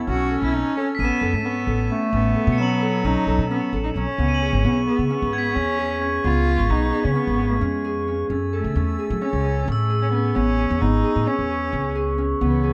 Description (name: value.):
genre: contemporary instrumental, chamber music in an uneven meter.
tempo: 263 BPM (eighths).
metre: 9/8.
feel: straight.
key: C# minor.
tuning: A4 = 439 Hz.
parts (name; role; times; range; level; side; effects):
mellow clarinet; second line; 0.0-4.1, 12.4-12.7 s; E3 to C#4; -27 LUFS; equal; none.
warm woodwind section; sustained chords; 0.0-12.7 s; A4 to E6; -35 LUFS; equal; none.
Celtic harp; arpeggios; 0.0-12.7 s; B3 to A4; -28 LUFS; equal; none.
warm cello; melody; 0.1-12.7 s; G#3 to F#4; -29 LUFS; equal; none.
upright bass; bass; 0.1-12.7 s; G#1 to F#3; -26 LUFS; equal; none.
crotales; texture; 0.9-6.5, 9.7-10.6 s; E6 to F#7; -33 LUFS; equal; none.
room: light reverb.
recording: none.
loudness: -22 LUFS.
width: mono.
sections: 0.0-4.2 A section; 4.2-12.7 B section.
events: none.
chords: 0.0 B9sus4; 4.2 C#m7; 6.2 C#7; 8.3 F#m9; 10.4 Amaj9.